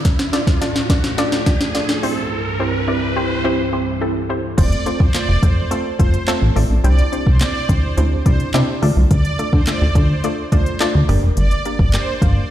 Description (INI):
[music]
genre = dance-pop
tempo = 106 BPM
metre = 4/4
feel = straight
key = F major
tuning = A4 = 443 Hz
[part]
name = soft round pluck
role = accompaniment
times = 0.0-12.4 s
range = A3 to F5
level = -22 LUFS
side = equal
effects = chorus, sidechain pumping
[part]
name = string machine, full ensemble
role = sustained chords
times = 0.0-4.6 s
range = C2 to F3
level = -25 LUFS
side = equal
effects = phaser, ensemble chorus, sidechain pumping
[part]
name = smooth R&B drum kit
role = drums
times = 0.0-12.4 s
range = crash cymbal, handclaps, hi-hat, kick drum, snare drum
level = -18 LUFS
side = equal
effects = overdrive
[part]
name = riser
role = sound effects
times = 0.0-3.4 s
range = none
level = -26 LUFS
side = right 1 dB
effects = none
[part]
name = supersaw pad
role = melody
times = 4.6-12.3 s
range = C5 to D5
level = -26 LUFS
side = right 3 dB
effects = sidechain pumping, ping-pong delay
[part]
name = plucky analog bass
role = bass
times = 4.6-12.4 s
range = F1 to D3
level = -15 LUFS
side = equal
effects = sidechain pumping
[sound]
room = light reverb, digital ambience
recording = played on a big sound system in a bare room, stone room reverb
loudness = -15 LUFS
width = side -12 dB against mid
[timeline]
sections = 0.0-4.6 A section; 4.6-12.5 B section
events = build-up 0.0-4.6; drum fill 0.0-2.3; riser 0.0-4.6; break 2.3-4.6; drop 4.6-12.5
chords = 0.0 Dm; 2.0 C; 4.6 F; 6.8 Cadd9; 8.8 Dm; 11.1 Gm